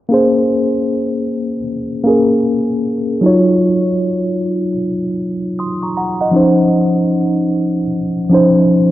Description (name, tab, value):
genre	hip hop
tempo	77 BPM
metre	4/4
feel	swing 63% on 16ths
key	Bb minor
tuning	A4 = 440 Hz
part	tine electric piano	accompaniment	0.1-8.9 s	F3 to Eb6	-12 LUFS	equal	medium stereo tremolo, cassette tape
room	moderate plate reverb, RT60 3.6 s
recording	dark, warm production, vinyl crackle, low-pass filter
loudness	-13 LUFS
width	side -14 dB against mid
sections	0.1-8.9 A section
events	none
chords	0.1 Bbm9; 3.2 Ebm9; 6.3 Dbmaj9